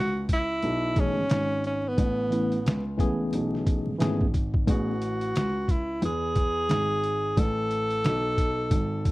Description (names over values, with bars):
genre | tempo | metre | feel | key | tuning
hip hop, jazz-hop | 89 BPM | 4/4 | swing 60% on 16ths | A major | A4 = 439 Hz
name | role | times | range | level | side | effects
breathy tenor saxophone | melody | 0.0-9.1 s | B3 to A4 | -28 LUFS | equal | none
dark baby grand piano | bass | 0.0-9.1 s | G#1 to E2 | -29 LUFS | equal | none
trip hop sampler-style drum kit | drums | 0.3-9.1 s | hi-hat, kick drum, snare drum | -26 LUFS | equal | none
tine electric piano | accompaniment | 1.0-4.9 s | E3 to G#4 | -28 LUFS | left 1 dB | medium stereo tremolo
room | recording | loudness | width
little or no reverb | dry, close 1970s-style studio recording, vinyl crackle | -24 LUFS | side -19 dB against mid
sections
0.0-9.1 A section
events
none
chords
0.0 Amaj9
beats
0.63 1.30 | 1.98 2.65 3.33 4.00 | 4.67 5.35 6.02 6.70 | 7.37 8.04 8.72